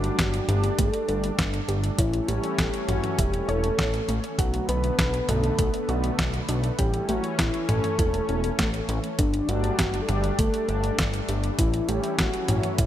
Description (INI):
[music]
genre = synthwave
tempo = 100 BPM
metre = 4/4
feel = straight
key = unclear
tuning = A4 = 443 Hz
[part]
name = soft octave-layered synth lead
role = melody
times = 0.0-12.9 s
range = D4 to B4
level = -29 LUFS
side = left 1 dB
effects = chorus, tape echo
[part]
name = lush unison pad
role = sustained chords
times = 0.0-12.9 s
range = D3 to D4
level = -31 LUFS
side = equal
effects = chorus, sidechain pumping
[part]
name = fat analog bass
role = bass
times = 0.0-12.9 s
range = E1 to B1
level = -27 LUFS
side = equal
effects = tube saturation
[part]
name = detuned 8-bit digital drum machine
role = drums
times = 0.0-12.9 s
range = hi-hat, snare drum, toms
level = -29 LUFS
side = equal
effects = overdrive
[part]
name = warbly dusty pluck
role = arpeggios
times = 0.2-12.9 s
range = A3 to C#5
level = -36 LUFS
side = right 1 dB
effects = chorus, tape echo
[part]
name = electronic kick drum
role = drums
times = 0.2-12.9 s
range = none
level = -27 LUFS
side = equal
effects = overdrive
[sound]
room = light reverb, digital ambience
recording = none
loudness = -22 LUFS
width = side -12 dB against mid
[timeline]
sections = 0.0-12.9 A section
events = none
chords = 0.0 Gsus2; 2.0 A; 4.4 Bm7; 6.8 A; 9.2 Gsus2; 11.6 A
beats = 0.19 0.79 1.39 | 1.99 2.59 3.19 3.79 | 4.39 4.99 5.59 6.19 | 6.79 7.39 7.99 8.59 | 9.19 9.79 10.39 10.99 | 11.59 12.19 12.79